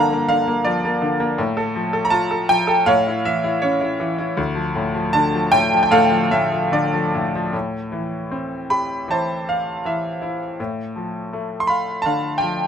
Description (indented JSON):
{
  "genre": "classical, lyrical solo piano",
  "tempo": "78 BPM",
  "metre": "4/4",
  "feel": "uneven beats, rubato",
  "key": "D harmonic minor, A minor from 7.5 s",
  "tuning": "A4 = 445 Hz",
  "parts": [
    { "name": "bright concert grand piano", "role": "solo", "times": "0.0-12.7 s", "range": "D2 to C6", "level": "-18 LUFS", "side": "equal", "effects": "none" }
  ],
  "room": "light reverb",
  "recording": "none",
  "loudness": "-18 LUFS",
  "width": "side -8 dB against mid",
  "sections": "0.0-7.5 A section; 7.5-12.7 B section",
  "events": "none",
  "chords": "0.0 Gm7; 1.4 Gm9/A; 2.9 A; 4.4 Dm; 7.5 Am7; 10.6 Dm/A"
}